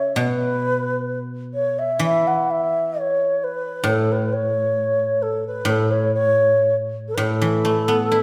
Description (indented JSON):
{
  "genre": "chinese traditional, Chinese chamber ensemble",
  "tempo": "65 BPM",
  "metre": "2/4",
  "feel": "rubato",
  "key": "A gong mode",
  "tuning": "A4 = 439 Hz",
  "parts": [
    { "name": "mellow xiao", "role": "melody", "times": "0.0-8.2 s", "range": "A4 to F#5", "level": "-22 LUFS", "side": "equal", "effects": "none" },
    { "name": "guzheng", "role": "accompaniment", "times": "0.0-8.2 s", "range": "A2 to E4", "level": "-26 LUFS", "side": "equal", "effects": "none" }
  ],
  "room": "wet recital hall reverb, RT60 1.5 s",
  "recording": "none",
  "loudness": "-21 LUFS",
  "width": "mono",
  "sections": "0.0-8.2 A section",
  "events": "none",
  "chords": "none"
}